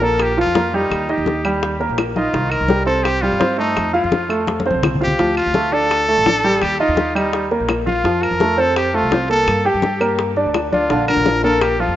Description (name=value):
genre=latin, Cuban son and guajira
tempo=168 BPM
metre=4/4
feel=straight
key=Bb major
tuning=A4 = 440 Hz
part: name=bright trumpet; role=melody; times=0.0-12.0 s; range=Eb4 to Bb4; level=-20 LUFS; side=equal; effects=tape echo
part: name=clear grand piano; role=arpeggios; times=0.0-11.9 s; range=D3 to G5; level=-18 LUFS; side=right 1 dB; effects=none
part: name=upright bass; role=bass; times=0.0-12.0 s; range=A1 to G2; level=-25 LUFS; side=equal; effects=none
part: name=congas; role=percussion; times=0.0-12.0 s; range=none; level=-26 LUFS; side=left 2 dB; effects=none
part: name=bongos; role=percussion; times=0.2-11.8 s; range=none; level=-23 LUFS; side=left 6 dB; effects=none
part: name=claves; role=percussion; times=0.2-11.8 s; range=none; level=-29 LUFS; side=right 2 dB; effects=none
part: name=nylon-string guitar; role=accompaniment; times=10.9-11.6 s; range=D3 to F4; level=-22 LUFS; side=left 4 dB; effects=none
room=moderate lush hall reverb, RT60 2.6 s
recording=rough home demo mix, nothing above 7.7 kHz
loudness=-15 LUFS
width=side -12 dB against mid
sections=0.0-12.0 A section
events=drum fill 4.5-5.2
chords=0.0 Bb5; 0.9 Eb; 2.3 Cm; 3.8 F; 5.2 Dm; 6.6 Eb; 8.0 F; 9.5 Gm; 10.9 Bb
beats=0.20 0.56 | 0.91 1.27 1.63 1.98 | 2.34 2.70 3.06 3.41 | 3.77 4.12 4.48 4.84 | 5.20 5.55 5.91 6.27 | 6.62 6.98 7.34 7.69 | 8.05 8.41 8.76 9.12 | 9.48 9.83 10.19 10.54 | 10.90 11.26 11.61